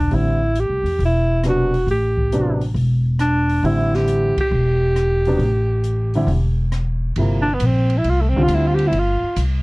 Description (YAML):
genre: modal jazz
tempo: 136 BPM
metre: 4/4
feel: swing 68% on 8ths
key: A dorian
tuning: A4 = 440 Hz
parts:
  - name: breathy alto saxophone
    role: melody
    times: 0.0-9.4 s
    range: A3 to G4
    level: -20 LUFS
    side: right 1 dB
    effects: none
  - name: upright bass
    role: bass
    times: 0.0-9.6 s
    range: E1 to E2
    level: -19 LUFS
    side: equal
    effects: none
  - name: warm concert grand piano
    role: accompaniment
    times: 0.1-8.9 s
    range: C3 to F4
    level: -21 LUFS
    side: equal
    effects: none
  - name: open jazz drum kit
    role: drums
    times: 0.1-9.5 s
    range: hi-hat, kick drum, ride cymbal, rim click, snare drum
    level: -31 LUFS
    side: equal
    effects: none
room: light reverb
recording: cassette tape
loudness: -16 LUFS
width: side -24 dB against mid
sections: 0.0-7.2 A section; 7.2-9.6 B section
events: band accent 4.3; alto saxophone solo 7.2-9.6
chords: 0.0 Am7; 7.2 G7sus4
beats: | 0.11 0.55 0.99 1.44 | 1.88 2.32 2.76 3.20 | 3.64 4.08 4.52 4.96 | 5.41 5.85 6.29 6.73 | 7.17 7.61 8.05 8.49 | 8.93 9.37